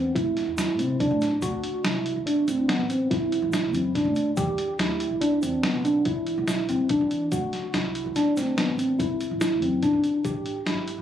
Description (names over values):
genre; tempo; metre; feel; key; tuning
progressive instrumental, band music in an uneven meter; 142 BPM; 7/4; straight; unclear; A4 = 440 Hz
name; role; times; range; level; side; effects
mellow tine electric piano; arpeggios; 0.0-11.0 s; B3 to G4; -24 LUFS; equal; phaser, analog delay, plate reverb
upright bass; bass; 0.0-11.0 s; G1 to E3; -32 LUFS; equal; none
lo-fi sampler-style drum kit; drums; 0.2-11.0 s; hi-hat, kick drum, snare drum; -29 LUFS; equal; none
tube shaker; percussion; 0.6-10.4 s; none; -44 LUFS; right 3 dB; none
room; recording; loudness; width
moderate studio reverb, RT60 0.6 s; recorded on a phone in the room, club reverb; -22 LUFS; side -10 dB against mid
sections
0.0-11.0 A section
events
none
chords
0.0 Am; 1.4 Dadd9; 4.4 Em7; 7.3 Dadd9; 10.2 A7(no3)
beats
0.15 0.57 1.00 | 1.42 1.84 2.27 2.69 3.11 3.54 3.96 | 4.38 4.80 5.22 5.64 6.06 6.48 6.90 | 7.32 7.74 8.16 8.58 9.00 9.41 9.83 | 10.25 10.67